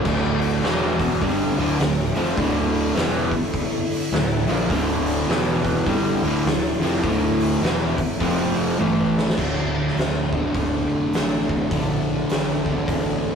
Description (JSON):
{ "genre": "stoner and doom metal", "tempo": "103 BPM", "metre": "4/4", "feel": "swing 62% on 8ths", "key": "D minor", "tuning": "A4 = 440 Hz", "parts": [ { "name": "bowed-like drone", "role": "sustained chords", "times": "0.6-13.3 s", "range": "D3 to E5", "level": "-30 LUFS", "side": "left 2 dB", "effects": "none" }, { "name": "crunchy overdriven guitar", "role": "riff", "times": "0.0-9.4 s", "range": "D2 to Bb3", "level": "-24 LUFS", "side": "right 1 dB", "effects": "none" }, { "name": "fuzz guitar", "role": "riff", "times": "0.0-13.3 s", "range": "D2 to Bb3", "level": "-24 LUFS", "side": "right 1 dB", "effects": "distortion" }, { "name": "growling fingered electric bass", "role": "bass", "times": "0.0-13.3 s", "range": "D1 to Bb1", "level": "-30 LUFS", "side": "equal", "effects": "overdrive" }, { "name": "oversized low-tuned drum kit", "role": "drums", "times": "0.0-13.0 s", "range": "crash cymbal, hi-hat, kick drum, snare drum, toms", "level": "-24 LUFS", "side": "equal", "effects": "none" } ], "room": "moderate studio reverb, RT60 0.6 s", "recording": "rough rehearsal-room recording, warm saturation", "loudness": "-19 LUFS", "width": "side -6 dB against mid", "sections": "0.0-9.4 A section; 9.4-13.3 B section", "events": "drum fill 8.8-9.4", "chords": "0.0 D5; 0.6 E5; 1.2 Dm; 5.3 E5; 5.9 Dm; 8.2 F5; 8.8 A5; 9.4 D5" }